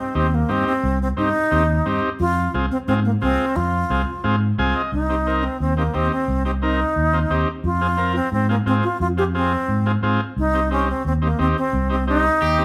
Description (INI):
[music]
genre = latin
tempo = 176 BPM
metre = 4/4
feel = straight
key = unclear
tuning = A4 = 443 Hz
[part]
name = bright alto flute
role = melody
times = 0.0-12.6 s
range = Bb3 to G4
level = -24 LUFS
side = equal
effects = none
[part]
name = combo organ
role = accompaniment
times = 0.1-12.6 s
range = C4 to Ab5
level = -27 LUFS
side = equal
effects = none
[part]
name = fingered electric bass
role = bass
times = 0.2-12.6 s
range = C2 to Ab2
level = -24 LUFS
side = equal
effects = none
[part]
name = electric guitar at the edge of break-up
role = second line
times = 12.4-12.6 s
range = G4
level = -26 LUFS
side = equal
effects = none
[sound]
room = moderate large studio reverb, RT60 1.1 s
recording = band playing live in one room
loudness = -20 LUFS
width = mono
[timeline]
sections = 0.0-4.9 A section; 4.9-12.6 B section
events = transistor combo organ fill 4.4-4.9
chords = 0.0 Cm; 2.2 Fm; 4.9 Cm; 7.6 Fm; 10.4 Cm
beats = 0.15 0.49 | 0.83 1.18 1.52 1.86 | 2.20 2.54 2.88 3.22 | 3.56 3.90 4.24 4.58 | 4.92 5.26 5.60 5.94 | 6.28 6.62 6.96 7.31 | 7.65 7.99 8.33 8.67 | 9.01 9.35 9.69 10.03 | 10.37 10.71 11.05 11.39 | 11.73 12.07 12.41